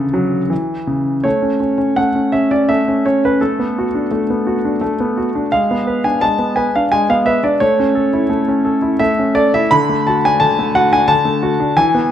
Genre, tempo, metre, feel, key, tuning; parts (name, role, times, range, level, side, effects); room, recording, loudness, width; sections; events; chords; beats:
classical-period piano sonatina; 86 BPM; 3/4; rubato; A major; A4 = 437 Hz
clear grand piano; solo; 0.0-12.1 s; C#3 to B5; -13 LUFS; equal
moderate recital hall reverb, RT60 1.5 s; dark, warm production; -13 LUFS; side -10 dB against mid
0.0-1.3 A section; 1.3-12.1 B section
0.0 A; 0.5 C#m; 1.3 A; 3.4 Bm7/A; 5.5 G#dim; 7.6 A; 9.7 D
0.51 | 1.25 1.98 2.69 | 3.40 4.12 4.82 | 5.52 6.22 6.92 | 7.62 8.31 9.01 | 9.70 10.40 11.09 | 11.78